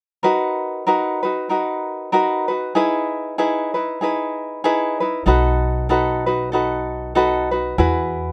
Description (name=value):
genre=Hawaiian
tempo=96 BPM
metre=4/4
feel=swing 58% on 8ths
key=B major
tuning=A4 = 442 Hz
part: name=tenor ukulele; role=accompaniment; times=0.2-8.3 s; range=D#4 to B4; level=-21 LUFS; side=equal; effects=none
part: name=upright bass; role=bass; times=5.3-8.3 s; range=B1 to E2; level=-25 LUFS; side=equal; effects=none
room=light reverb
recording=none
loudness=-20 LUFS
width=mono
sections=0.2-8.3 A section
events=none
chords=0.2 Bmaj7; 2.8 Emaj7; 5.3 B7; 7.8 Eadd9